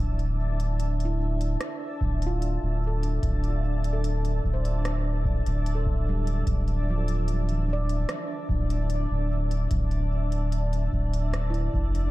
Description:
ambient dub; 74 BPM; 4/4; straight; D minor; A4 = 440 Hz
granular cloud pad; sustained chords; 0.0-12.1 s; D4 to A5; -34 LUFS; equal; built-in reverb
handpan; arpeggios; 0.0-12.1 s; E3 to D5; -37 LUFS; right 2 dB; tape echo
soft dub sub bass; bass; 0.0-12.1 s; D1 to F1; -25 LUFS; equal
organic electronic drum kit; drums; 0.2-12.1 s; hi-hat, rim click; -39 LUFS; equal
electronic kick drum; drums; 2.0-11.9 s; -30 LUFS; equal
little or no reverb; dark, warm production; -24 LUFS; side -18 dB against mid
0.0-12.1 A section
0.0 Dmadd9
0.79 1.60 2.42 | 3.23 4.04 4.85 5.66 | 6.47 7.28 8.09 8.90 | 9.71 10.52 11.34

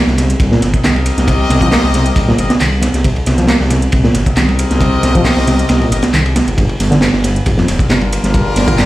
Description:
breakbeat, breaks; 136 BPM; 4/4; straight; C minor; A4 = 440 Hz
reed electric piano; riff; 0.0-8.9 s; F2 to Bb3; -17 LUFS; equal; tremolo, digital delay
dark detuned saw bass; bass; 0.1-8.8 s; D1 to C2; -16 LUFS; equal
crunchy breakbeat drum kit; drums; 0.1-8.9 s; hi-hat, kick drum, ride cymbal, snare drum; -14 LUFS; right 1 dB
house drum kit; drums; 0.2-8.9 s; handclaps, hi-hat, ride cymbal; -21 LUFS; equal
congas and bongos; percussion; 0.2-8.8 s; -26 LUFS; left 2 dB
clear horn section; stabs; 0.7-8.9 s; G3 to Eb5; -18 LUFS; left 3 dB; digital delay
moderate studio reverb, RT60 0.5 s; played on a big sound system in a bare room, stone room reverb, vinyl crackle; -10 LUFS; side -16 dB against mid
0.0-8.9 A section
0.0 Cm7; 6.6 Gm7
0.40 0.84 | 1.28 1.72 2.16 2.60 | 3.05 3.49 3.93 4.37 | 4.81 5.25 5.69 6.13 | 6.58 7.02 7.46 7.90 | 8.34 8.78

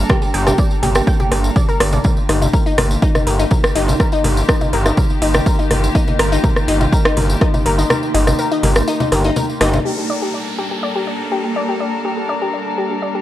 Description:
melodic techno; 123 BPM; 4/4; straight; G minor; A4 = 436 Hz
warm studio string section; sustained chords; 0.0-13.2 s; Eb3 to Bb4; -26 LUFS; left 1 dB; vintage 12-bit sampler grit, sidechain pumping
gritty driven synth bass; bass; 0.0-9.8 s; G1; -17 LUFS; equal; sidechain pumping
granular cloud pad; texture; 0.0-13.2 s; Bb3 to Bb5; -26 LUFS; right 2 dB; built-in reverb, sidechain pumping
analog pluck; arpeggios; 0.1-13.2 s; Eb4 to G5; -20 LUFS; left 3 dB; chorus, sidechain pumping, analog delay
electronic kick drum; drums; 0.1-7.5 s; -16 LUFS; equal; overdrive
house drum kit; drums; 0.1-9.8 s; congas, hi-hat, rim click; -19 LUFS; equal; overdrive, low-pass filter on perc, low-pass filter on snare, low-pass filter on hats, low-pass filter on room
tambourine; percussion; 0.1-9.8 s; -31 LUFS; right 1 dB
downlifter; sound effects; 9.9-13.2 s; -29 LUFS; equal
light reverb, digital ambience; dry, gritty hardware recording; -14 LUFS; side -13 dB against mid
0.0-9.9 A section; 9.9-13.2 B section
kick drops out 7.9-9.9; band accent 9.6; filter sweep on synth pluck 9.9-13.2
0.0 Gmadd9; 2.0 Eb/G; 9.9 Gmadd9
| 0.10 0.58 1.07 1.56 | 2.05 2.54 3.02 3.51 | 4.00 4.49 4.97 5.46 | 5.95 6.44 6.92 7.41 | 7.90 8.39 8.88 9.36 | 9.85 10.34 10.83 11.32 | 11.80 12.29 12.78

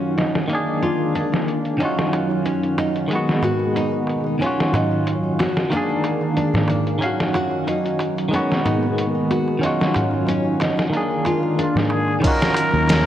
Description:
trip hop; 92 BPM; 4/4; straight; Eb minor; A4 = 440 Hz
clean electric guitar; accompaniment; 0.0-13.1 s; Eb3 to F5; -23 LUFS; equal; tremolo, tape echo
string machine, cellos; sustained chords; 0.0-13.1 s; Eb3 to Db6; -24 LUFS; equal; ensemble chorus, vintage 12-bit sampler grit
nylon-string guitar; arpeggios; 0.0-13.1 s; Db4 to Gb4; -25 LUFS; equal; low-pass filter, ping-pong delay
trip hop sampler-style drum kit; drums; 0.2-13.1 s; crash cymbal, hi-hat, kick drum, snare drum; -24 LUFS; equal; overdrive, low-pass filter on hats, low-pass filter on snare, low-pass filter on kick, low-pass filter on cymbals
darbuka; percussion; 1.8-13.0 s; -28 LUFS; right 1 dB
trumpet with plunger mute; melody; 11.6-13.1 s; F4 to Bb4; -21 LUFS; equal
fingered electric bass; bass; 12.7-13.1 s; Eb2; -19 LUFS; equal
moderate echo chamber reverb, RT60 2.1 s; worn, warbling old tape, cassette tape, warbly pitch drift; -18 LUFS; side -11 dB against mid
0.0-12.2 A section
filter sweep on string machine 0.0-12.2
0.0 Ebm9; 0.5 Bb7/Eb; 1.8 Ebm9; 3.1 Abm9/Eb; 4.4 Ebm9; 5.7 Bb7/Eb; 7.0 Ebm9; 8.3 Abm9/Eb; 9.6 Ebm9; 10.9 Bb7/Eb; 12.2 Ebm9
0.50 1.15 | 1.81 2.46 3.11 3.76 | 4.42 5.07 5.72 6.37 | 7.02 7.68 8.33 8.98 | 9.63 10.29 10.94 11.59 | 12.24 12.89

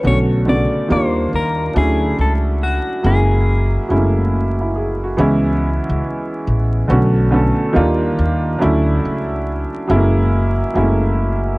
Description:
hip hop; 70 BPM; 4/4; swing 66% on 16ths; B dorian; A4 = 441 Hz
clean electric guitar; melody; 0.0-3.9 s; F#4 to D5; -22 LUFS; left 2 dB; spring reverb, low-pass filter
felt-muted upright piano; accompaniment; 0.0-11.6 s; C#3 to A4; -17 LUFS; right 1 dB; cassette tape, low-pass filter
upright bass; bass; 0.0-11.6 s; F#1 to D#2; -17 LUFS; equal
light reverb; vinyl crackle, low-pass filter, nothing above 10.8 kHz; -14 LUFS; side -22 dB against mid
0.0-11.6 A section
0.0 Bm9; 0.9 D#maj9; 1.8 Dmaj9; 3.0 F#9; 5.2 C#m7; 6.9 Bm9; 7.8 D#maj9; 8.6 Dmaj9; 9.9 F#9
| 0.04 0.89 1.75 2.61 | 3.47 4.32 5.18 6.04 | 6.89 7.75 8.61 9.47 | 10.32 11.18

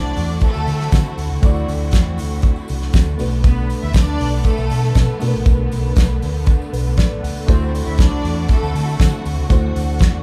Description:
disco; 119 BPM; 4/4; straight; A4 = 440 Hz
clear studio string section; second line; 0.0-9.2 s; A3 to E5; -28 LUFS; equal
reed electric piano; accompaniment; 0.0-10.2 s; A3 to F#5; -30 LUFS; equal; spring reverb
rich studio string section; sustained chords; 0.0-10.2 s; D3 to F#4; -31 LUFS; equal
hollow-body short-scale fingered electric bass; bass; 0.0-10.2 s; A1 to D3; -23 LUFS; equal
damped 70s drum kit; drums; 0.2-10.1 s; hi-hat, kick drum, snare drum; -19 LUFS; equal
tambourine; percussion; 0.2-10.1 s; -46 LUFS; equal
light reverb; band playing live in one room; -17 LUFS; mono
0.0-10.2 A section
reed electric piano fill 6.5-7.5
0.0 D9; 3.2 Bm7; 7.5 D9
0.41 0.92 | 1.42 1.92 2.43 2.93 | 3.44 3.94 4.45 4.95 | 5.46 5.96 6.47 6.98 | 7.48 7.99 8.49 9.00 | 9.50 10.01

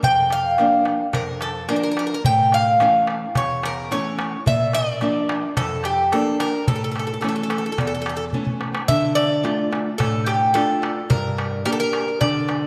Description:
greek folk, Greek bouzouki band; 108 BPM; 4/4; straight; A phrygian dominant; A4 = 442 Hz
Greek bouzouki; melody; 0.0-12.7 s; G4 to G5; -23 LUFS; equal; delay
nylon-string guitar; accompaniment; 0.0-12.7 s; E2 to G4; -26 LUFS; equal
darbuka; percussion; 0.0-12.7 s; -28 LUFS; equal
wet lush hall reverb, RT60 2.1 s; dreamy mix soaked in reverb, lossy compression artefacts; -21 LUFS; mono
0.0-8.9 A section; 8.9-12.7 A section
drum fill 8.3-8.9
0.0 Bb; 2.2 A; 4.5 Bb; 6.7 A; 8.9 Dm; 11.1 Gm
| 0.03 0.58 1.14 1.69 | 2.25 2.80 3.35 3.91 | 4.46 5.02 5.57 6.12 | 6.68 7.23 7.79 8.34 | 8.89 9.45 10.00 10.55 | 11.10 11.66 12.21

